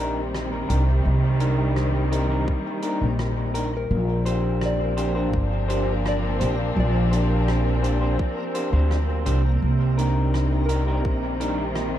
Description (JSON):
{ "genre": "ambient dub", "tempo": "84 BPM", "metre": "4/4", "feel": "straight", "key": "C minor", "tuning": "A4 = 440 Hz", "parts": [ { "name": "clear studio string section", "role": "sustained chords", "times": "0.0-12.0 s", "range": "Bb2 to D4", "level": "-29 LUFS", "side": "left 1 dB", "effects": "none" }, { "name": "soft synth bell", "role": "arpeggios", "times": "0.0-12.0 s", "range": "Bb4 to D5", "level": "-34 LUFS", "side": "equal", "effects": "chorus, tape echo" }, { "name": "electric guitar through a small old amp", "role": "stabs", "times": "0.0-11.6 s", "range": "D4 to C5", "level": "-28 LUFS", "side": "left 1 dB", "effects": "low-pass filter, dub echo" }, { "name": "upright bass", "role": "bass", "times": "0.0-12.0 s", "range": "G1 to D2", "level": "-22 LUFS", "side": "equal", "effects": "tube saturation" }, { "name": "backwards swelling texture", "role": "texture", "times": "0.2-12.0 s", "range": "Bb3 to Bb4", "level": "-36 LUFS", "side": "right 3 dB", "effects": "built-in reverb" }, { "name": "soft-mallet drum kit", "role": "drums", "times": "0.3-11.9 s", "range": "hi-hat, rim click", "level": "-38 LUFS", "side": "right 1 dB", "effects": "dub echo" }, { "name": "electronic kick drum", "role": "drums", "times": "2.5-11.2 s", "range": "none", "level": "-25 LUFS", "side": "equal", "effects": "overdrive" } ], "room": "small room reverb", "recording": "dark, warm production", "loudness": "-20 LUFS", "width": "side -11 dB against mid", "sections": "0.0-12.0 A section", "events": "none", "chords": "0.0 Cm7; 3.9 Bb6; 9.6 Cm7", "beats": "0.34 | 1.05 1.76 2.48 3.19 | 3.91 4.62 5.34 6.05 | 6.76 7.48 8.19 8.91 | 9.62 10.34 11.05 11.76" }